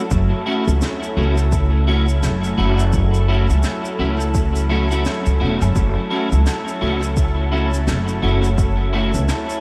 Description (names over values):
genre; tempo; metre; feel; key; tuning
ambient dub; 85 BPM; 4/4; swing 60% on 16ths; F# minor; A4 = 440 Hz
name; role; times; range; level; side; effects
soft additive organ-like pad; sustained chords; 0.0-9.6 s; F#3 to A4; -28 LUFS; equal; ensemble chorus, built-in reverb
bubbling stepped-filter texture; texture; 0.0-9.6 s; A4; -32 LUFS; equal; chorus, built-in reverb
upright bass; bass; 0.1-9.3 s; E1 to C#2; -20 LUFS; equal; none
electronic kick drum; drums; 0.1-8.8 s; none; -23 LUFS; equal; overdrive
shaker, snare drum and woodblock; drums; 0.1-9.6 s; none; -33 LUFS; equal; dub echo
electric guitar at the edge of break-up; stabs; 0.5-9.1 s; A3 to F#4; -26 LUFS; equal; ensemble chorus, dub echo
room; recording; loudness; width
moderate lush hall reverb, RT60 1.7 s; dreamy mix soaked in reverb, vinyl crackle; -18 LUFS; mono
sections
0.0-9.6 A section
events
none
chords
0.0 F#m7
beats
| 0.11 0.82 1.52 2.23 | 2.94 3.64 4.35 5.05 | 5.76 6.46 7.17 7.88 | 8.58 9.29